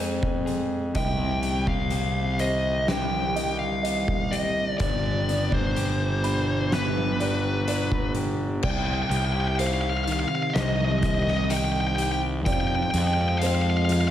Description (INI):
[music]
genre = post-rock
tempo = 62 BPM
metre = 4/4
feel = straight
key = C harmonic minor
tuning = A4 = 441 Hz
[part]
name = ethereal airy pad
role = sustained chords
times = 0.0-14.1 s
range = B2 to Ab4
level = -35 LUFS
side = equal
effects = ensemble chorus, built-in reverb
[part]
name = clean electric guitar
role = arpeggios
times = 0.0-14.1 s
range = F2 to Ab4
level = -31 LUFS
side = left 2 dB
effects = lush chorus, slapback echo
[part]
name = felt-muted upright piano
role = arpeggios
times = 0.0-14.1 s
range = C5 to B5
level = -37 LUFS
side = right 3 dB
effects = slapback echo
[part]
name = fuzz picked electric bass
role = bass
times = 0.0-14.1 s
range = G1 to F2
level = -26 LUFS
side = equal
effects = overdrive
[part]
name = oversized low-tuned drum kit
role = drums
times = 0.2-14.1 s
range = crash cymbal, hi-hat, kick drum, snare drum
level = -30 LUFS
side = equal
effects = none
[part]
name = smooth overdriven lead guitar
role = melody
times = 1.0-14.1 s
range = B4 to G5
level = -28 LUFS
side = left 1 dB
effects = slapback echo
[sound]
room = light reverb, studio reverb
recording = none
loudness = -22 LUFS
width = side -11 dB against mid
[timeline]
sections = 0.0-8.6 A section; 8.6-14.1 B section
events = none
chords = 0.0 Fm; 1.0 Cmadd9; 4.8 G; 8.6 Cmadd9; 12.5 Fm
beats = | 0.95 1.92 2.88 3.84 | 4.80 5.76 6.72 7.68 | 8.64 9.60 10.55 11.51 | 12.47 13.42